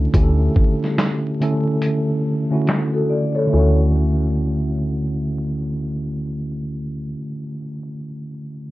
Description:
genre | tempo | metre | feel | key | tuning
lo-fi hip hop | 71 BPM | 4/4 | swing 62% on 16ths | D major | A4 = 441 Hz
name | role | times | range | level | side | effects
mellow tine electric piano | accompaniment | 0.0-8.7 s | D3 to A4 | -21 LUFS | equal | medium stereo tremolo, cassette tape, low-pass filter
woody FM bass | bass | 0.0-7.2 s | D2 | -21 LUFS | equal | none
dusty soul sampler-style drum kit | drums | 0.1-2.9 s | handclaps, hi-hat, kick drum, snare drum | -18 LUFS | equal | vintage 12-bit sampler grit
vibraphone with soft mallets | second line | 2.9-3.8 s | F#4 to D5 | -22 LUFS | left 3 dB | low-pass filter, analog delay
room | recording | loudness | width
light reverb | dark, warm production, vinyl crackle, low-pass filter | -18 LUFS | side -17 dB against mid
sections
0.0-3.5 A section; 3.5-6.9 B section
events
filter sweep 0.0-3.5; kick muted 1.8-3.5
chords
0.0 Dmaj9

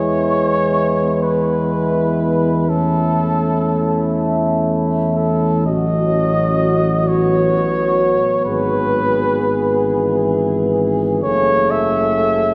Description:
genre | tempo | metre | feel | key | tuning
classical, hymn-like piece for brass band | 37-44 BPM (dotted quarters) | 6/8 | rubato | E major | A4 = 436 Hz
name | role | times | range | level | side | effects
warm cornet | melody | 0.0-12.5 s | A4 to E5 | -22 LUFS | equal | none
warm French horn section | second line | 0.0-12.5 s | E4 to A4 | -26 LUFS | equal | none
clear trombone | accompaniment | 0.0-12.5 s | C#3 to A3 | -24 LUFS | equal | none
mellow euphonium | accompaniment | 0.0-12.5 s | A3 to C#4 | -25 LUFS | equal | none
dark tuba | bass | 0.0-12.5 s | F#1 to E2 | -23 LUFS | equal | none
room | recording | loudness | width
wet church reverb, RT60 3.4 s | heard from further back in the room, nothing above 10.5 kHz | -17 LUFS | mono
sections
0.0-12.5 A section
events
none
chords
0.0 E; 2.7 A/E; 5.7 B7/A; 8.5 E/G#; 11.2 F#m

